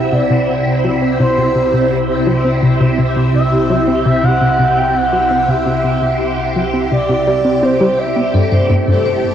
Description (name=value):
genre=ambient, sequencer-driven space music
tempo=84 BPM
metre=4/4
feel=straight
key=unclear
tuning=A4 = 436 Hz
part: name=expressive synth lead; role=melody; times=0.0-8.3 s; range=C5 to G5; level=-17 LUFS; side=right 1 dB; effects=chorus, tape echo
part: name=phased string machine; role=sustained chords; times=0.0-9.3 s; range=C3 to E5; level=-16 LUFS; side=equal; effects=ensemble chorus, phaser
part: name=analog pluck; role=riff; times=0.0-8.9 s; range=G2 to C4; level=-17 LUFS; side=left 1 dB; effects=chorus, cassette tape, tape echo
part: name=round analog bass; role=bass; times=0.0-9.3 s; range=G1 to C2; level=-30 LUFS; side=equal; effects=none
part: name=vibraphone with hard mallets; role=arpeggios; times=8.3-9.1 s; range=A4 to C5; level=-18 LUFS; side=left 4 dB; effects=auto-pan, tape echo
room=wet huge ambient reverb, RT60 7.8 s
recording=worn, warbling old tape, cassette tape, warbly pitch drift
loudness=-12 LUFS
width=side -9 dB against mid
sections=0.0-9.3 A section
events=fade-in on analog synth bass 0.0-9.3; filter sweep on synth arpeggio sound 0.0-9.3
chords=0.0 C; 8.3 Gsus2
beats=0.49 1.20 1.92 | 2.63 3.34 4.06 4.77 | 5.49 6.20 6.92 7.63 | 8.34 9.06